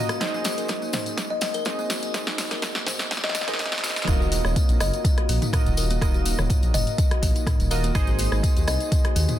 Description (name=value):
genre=afro house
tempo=124 BPM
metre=4/4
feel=straight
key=Eb dorian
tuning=A4 = 440 Hz
part: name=kalimba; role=arpeggios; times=0.0-9.4 s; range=Bb3 to Eb5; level=-30 LUFS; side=left 3 dB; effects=sidechain pumping, low-pass filter, dub echo
part: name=warm analog keys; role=stabs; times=0.0-9.4 s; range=Eb4 to Eb5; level=-31 LUFS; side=right 3 dB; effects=chorus, sidechain pumping, dub echo
part: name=deep house drum kit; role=drums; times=0.1-9.4 s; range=hi-hat, rim click, snare drum, toms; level=-28 LUFS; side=equal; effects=none
part: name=tambourine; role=percussion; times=0.1-9.4 s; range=none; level=-34 LUFS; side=left 2 dB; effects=none
part: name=electronic kick drum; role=drums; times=0.2-9.0 s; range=none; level=-22 LUFS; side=equal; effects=overdrive, high-pass filter on kick, high-pass filter on room
part: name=dark detuned saw bass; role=bass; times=4.1-9.3 s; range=Eb1 to Eb2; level=-24 LUFS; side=equal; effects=sidechain pumping
room=light reverb, digital ambience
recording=dense, heavily limited modern master, high-pass filter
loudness=-21 LUFS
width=side -12 dB against mid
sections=0.0-4.1 A section; 4.1-9.4 B section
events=build-up 0.0-4.1; drum fill 0.0-4.1; filter sweep on kalimba 0.0-4.1; filter sweep 0.0-4.1; drop 4.1-9.4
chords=0.2 Ab; 4.1 Ebmadd9; 8.0 Ab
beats=| 0.21 0.69 1.18 1.66 | 2.15 2.63 3.11 3.60 | 4.08 4.56 5.05 5.53 | 6.02 6.50 6.98 7.47 | 7.95 8.44 8.92